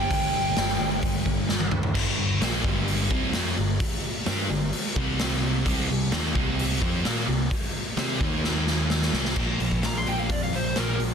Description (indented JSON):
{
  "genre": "hard rock",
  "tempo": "130 BPM",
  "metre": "4/4",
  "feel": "straight",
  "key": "G minor",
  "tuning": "A4 = 440 Hz",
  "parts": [
    { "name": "lead guitar through a small cranked amp", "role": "melody", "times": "0.0-1.7, 9.9-11.0 s", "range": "Bb4 to C6", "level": "-29 LUFS", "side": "right 1 dB", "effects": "overdrive" },
    { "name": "sludgy distorted guitar", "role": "riff", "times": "0.0-11.1 s", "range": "G2 to C5", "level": "-28 LUFS", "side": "right 1 dB", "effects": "overdrive" },
    { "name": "modern bright picked electric bass", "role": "bass", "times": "0.0-11.1 s", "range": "G1 to C3", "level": "-29 LUFS", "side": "equal", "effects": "none" },
    { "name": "raw garage drum kit", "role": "drums", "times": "0.1-11.1 s", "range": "crash cymbal, hi-hat, kick drum, snare drum, toms", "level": "-26 LUFS", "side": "equal", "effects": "none" }
  ],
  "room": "light reverb, small room reverb",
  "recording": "dense, heavily limited modern master",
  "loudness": "-23 LUFS",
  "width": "side -7 dB against mid",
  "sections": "0.0-2.0 A section; 2.0-9.4 B section; 9.4-11.1 C section",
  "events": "drum fill 1.5-2.0, 8.4-9.4; lead electric guitar solo 9.4-11.1",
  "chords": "0.0 G5; 2.0 Gm; 5.0 C5; 8.2 Eb5; 9.1 C5; 9.4 Bb5",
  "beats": "| 0.10 0.57 1.03 1.49 | 1.96 2.42 2.88 3.34 | 3.81 4.27 4.73 5.20 | 5.66 6.12 6.58 7.05 | 7.51 7.98 8.44 8.90 | 9.37 9.83 10.30 10.76"
}